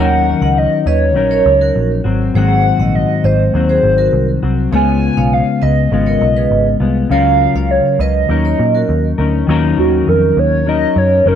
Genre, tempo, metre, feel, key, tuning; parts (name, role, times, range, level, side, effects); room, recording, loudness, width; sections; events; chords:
indie pop; 101 BPM; 4/4; straight; Eb minor; A4 = 440 Hz
hollow clarinet-like synth lead; melody; 0.0-11.4 s; Gb4 to Ab5; -15 LUFS; right 2 dB; phaser, wide subtle chorus, tape echo
vibraphone with hard mallets; second line; 0.0-9.0 s; Gb4 to Gb5; -23 LUFS; right 10 dB; lush chorus, tape echo
mellow electric guitar; accompaniment; 0.0-11.4 s; Ab2 to Bb4; -16 LUFS; left 6 dB; analog chorus, warbly pitch drift
vintage muted picked electric bass; bass; 0.0-11.4 s; Gb1 to Bb2; -16 LUFS; equal
light reverb; dry, close 1970s-style studio recording; -11 LUFS; side -9 dB against mid
0.0-9.5 A section; 9.5-11.4 B section
soft synth lead solo 9.5-11.4
0.0 Ebm7; 2.1 Ab7; 4.7 Db7; 7.1 Gbmaj7/Db; 8.3 Ebm7